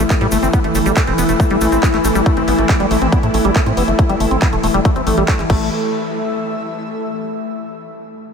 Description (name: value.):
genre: psychedelic trance.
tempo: 139 BPM.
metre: 4/4.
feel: straight.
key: unclear.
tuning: A4 = 440 Hz.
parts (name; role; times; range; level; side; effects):
swarming drone; sustained chords; 0.0-5.5 s; E3 to E4; -20 LUFS; left 1 dB; built-in reverb, sidechain pumping.
liquid acid bass; riff; 0.0-5.7 s; G3 to C4; -21 LUFS; left 1 dB; phaser, auto-pan, cassette tape, sidechain pumping, ping-pong delay.
tight sequencer bass; bass; 0.0-5.7 s; E1 to A2; -20 LUFS; equal; none.
impact; sound effects; 0.0-0.5 s; none; barely audible; none; none.
airy breathy pad; texture; 0.0-7.4 s; A3 to E6; -22 LUFS; left 2 dB; chorus, sidechain pumping.
drum and bass drum kit; drums; 0.1-5.6 s; crash cymbal, handclaps, hi-hat; -26 LUFS; equal; overdrive, studio reverb.
electronic kick drum; drums; 0.1-5.6 s; none; -15 LUFS; equal; studio reverb.
tube shaker; percussion; 0.1-2.2 s; none; -31 LUFS; left 4 dB; none.
room: moderate huge ambient reverb, RT60 7.1 s.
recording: dreamy mix soaked in reverb.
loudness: -13 LUFS.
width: side -6 dB against mid.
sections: 0.0-5.7 A section; 5.7-7.4 B section.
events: impact 0.0-0.5; filter sweep on analog synth bass 0.0-5.7; filter sweep on acid bass 0.0-5.7.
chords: 0.0 A5; 5.5 N.C.; 5.7 A5.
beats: 0.10 | 0.53 0.97 1.40 1.83 | 2.26 2.69 3.12 3.56 | 3.99 4.42 4.85 5.28 | 5.71 6.15 6.58 7.01.